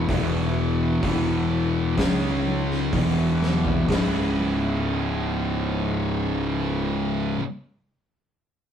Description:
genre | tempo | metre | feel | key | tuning
stoner and doom metal | 63 BPM | 4/4 | straight | C# minor | A4 = 440 Hz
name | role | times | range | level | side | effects
ensemble organ-string | sustained chords | 0.0-7.4 s | C#3 to F#4 | -37 LUFS | equal | none
overdriven electric guitar | riff | 0.0-7.4 s | C#2 to E4 | -31 LUFS | right 1 dB | none
thick fuzz guitar | riff | 0.0-7.4 s | C#2 to C#4 | -26 LUFS | left 6 dB | distortion
thick fuzz guitar | riff | 0.0-7.4 s | C#2 to C#4 | -27 LUFS | right 6 dB | distortion
fuzz fingered electric bass | bass | 0.0-7.3 s | C#1 to C#2 | -31 LUFS | equal | overdrive
oversized low-tuned drum kit | drums | 0.1-4.1 s | hi-hat, kick drum, snare drum, toms | -27 LUFS | equal | none
room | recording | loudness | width
light reverb | rough rehearsal-room recording | -21 LUFS | side -8 dB against mid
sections
0.0-3.9 A section; 3.9-7.7 B section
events
drum fill 3.4-3.9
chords
0.0 E5; 2.0 C#5; 2.9 E5; 3.9 C#m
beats
| 0.09 1.03 1.98 2.93 | 3.89 4.85 5.81 6.76

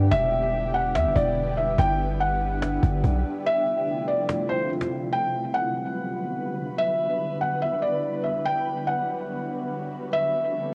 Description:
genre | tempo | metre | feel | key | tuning
hip hop, atmospheric cloud-rap | 144 BPM | 4/4 | half-time | G major | A4 = 440 Hz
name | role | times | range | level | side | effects
felt-muted upright piano | melody | 0.0-10.7 s | C5 to G5 | -28 LUFS | equal | cassette tape, analog delay
shimmering ambient pad | sustained chords | 0.0-10.7 s | C3 to B4 | -32 LUFS | equal | chorus, built-in reverb, cassette tape
warm 808-style bass | bass | 0.0-3.2 s | E1 to G2 | -27 LUFS | equal | none
cajon | drums | 0.1-5.0 s | none | -33 LUFS | equal | cassette tape
room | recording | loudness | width
small room ambience | home recording on cassette | -25 LUFS | mono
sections
0.0-5.1 A section; 5.1-10.7 B section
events
kick muted 3.5-5.1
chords
0.1 Em7; 1.8 Gmaj7; 3.5 Fmaj7; 5.1 Gmaj7; 6.8 Em7; 8.5 Gmaj7; 10.1 Fmaj7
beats
| 0.12 0.54 0.95 1.37 | 1.78 2.20 2.62 3.04 | 3.45 3.87 4.29 4.70 | 5.12 5.54 5.95 6.37 | 6.79 7.20 7.62 8.04 | 8.45 8.87 9.29 9.70 | 10.12 10.54

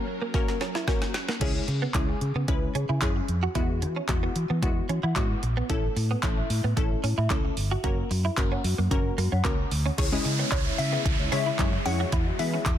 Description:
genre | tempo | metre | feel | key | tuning
dance-pop | 112 BPM | 4/4 | straight | C# minor | A4 = 440 Hz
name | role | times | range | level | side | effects
wavetable chord stab | accompaniment | 0.0-12.7 s | G#3 to D#5 | -32 LUFS | left 3 dB | sidechain pumping
string machine, violas | sustained chords | 0.0-1.4, 10.4-12.8 s | C#3 to A#4 | -37 LUFS | left 1 dB | phaser, ensemble chorus, sidechain pumping
direct-recorded clean electric guitar | riff | 0.0-12.6 s | A3 to F#4 | -34 LUFS | right 5 dB | ensemble chorus
deep house drum kit | drums | 0.3-12.8 s | crash cymbal, handclaps, hi-hat, kick drum, snare drum | -28 LUFS | equal | none
celesta | arpeggios | 1.4-12.7 s | E4 to G#5 | -38 LUFS | left 6 dB | sidechain pumping, ping-pong delay
vintage muted fingered electric bass | bass | 1.4-12.8 s | F#1 to E3 | -28 LUFS | equal | sidechain pumping
downlifter | sound effects | 10.0-12.8 s | none | -32 LUFS | right 3 dB | none
glassy wavetable pluck | melody | 10.5-12.8 s | C#5 to F#5 | -31 LUFS | left 4 dB | chorus, ping-pong delay
room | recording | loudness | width
light reverb | dense, heavily limited modern master | -24 LUFS | side -10 dB against mid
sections
0.0-1.4 A section; 1.4-10.0 B section; 10.0-12.8 C section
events
drum fill 0.3-1.4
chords
0.0 F#; 1.4 C#m; 3.6 Eadd9; 5.7 A; 7.8 F#; 10.0 C#m; 12.1 Eadd9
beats
0.34 0.88 | 1.41 1.95 2.48 3.02 | 3.55 4.09 4.63 5.16 | 5.70 6.23 6.77 7.30 | 7.84 8.38 8.91 9.45 | 9.98 10.52 11.05 11.59 | 12.13 12.66

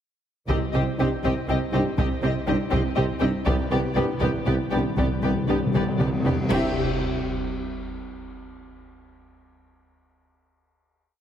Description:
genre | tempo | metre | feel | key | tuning
cinematic, epic orchestral film score | 80 BPM (dotted quarters) | 6/8 | straight | C harmonic minor | A4 = 440 Hz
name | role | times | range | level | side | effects
warm symphonic violin section | melody | 0.5-6.8 s | D5 to E5 | -34 LUFS | left 5 dB | none
warm studio violin section | second line | 0.5-6.8 s | G4 | -32 LUFS | left 3 dB | none
rich studio viola section | accompaniment | 0.5-6.8 s | B3 to C4 | -31 LUFS | right 1 dB | none
warm symphonic cello section | bass | 0.5-6.8 s | C3 | -29 LUFS | right 2 dB | none
warm symphonic double bass section | bass | 0.5-6.8 s | C2 | -31 LUFS | right 2 dB | none
warm tuba | bass | 0.5-6.7 s | C2 | -30 LUFS | right 2 dB | none
taiko ensemble | drums | 0.5-6.5 s | none | -29 LUFS | equal | none
timpani | percussion | 0.5-1.2, 3.5-6.7 s | C3 | -29 LUFS | left 1 dB | none
dark French horn section | sustained chords | 1.0-6.7 s | B3 to E4 | -34 LUFS | left 4 dB | none
dark trombone section | sustained chords | 1.0-6.7 s | G2 to G3 | -32 LUFS | right 1 dB | none
cymbal swell, clash cymbals and concert bass drum | percussion | 3.5-7.5 s | none | -36 LUFS | left 1 dB | none
room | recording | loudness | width
wet scoring stage reverb, RT60 1.9 s | heavily compressed radio sound | -21 LUFS | side -9 dB against mid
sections
0.5-6.5 theme; 6.5-8.0 final chord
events
timpani fill 3.5-6.5; drum fill 5.7-6.5; band accent 6.5-7.0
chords
0.5 Cm; 3.5 G/C; 6.5 C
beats
| 0.49 1.24 | 1.98 2.72 | 3.46 4.21 | 4.98 5.74 | 6.50 7.26

